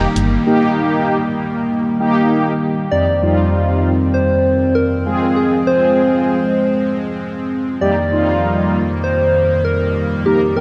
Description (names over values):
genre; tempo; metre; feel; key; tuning
pop; 98 BPM; 4/4; straight; unclear; A4 = 440 Hz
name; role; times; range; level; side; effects
mellow synth brass; accompaniment; 0.0-10.6 s; F2 to Bb4; -21 LUFS; equal; chorus
chorused pulse-width pad; sustained chords; 0.0-10.6 s; F2 to C4; -20 LUFS; equal; none
soft struck synth lead; melody; 2.9-10.6 s; G4 to D5; -20 LUFS; equal; chorus, diffuse ambient delay
room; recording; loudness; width
wet cathedral reverb, RT60 6.5 s; dreamy mix soaked in reverb; -16 LUFS; mono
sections
0.0-2.9 A section; 2.9-10.6 B section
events
none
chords
0.0 Eb; 2.9 Cm/F; 5.1 Fm; 7.8 Eb/F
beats
| 0.47 1.08 1.69 2.30 | 2.92 3.53 4.14 4.75 | 5.36 5.98 6.59 7.20 | 7.81 8.43 9.04 9.65 | 10.26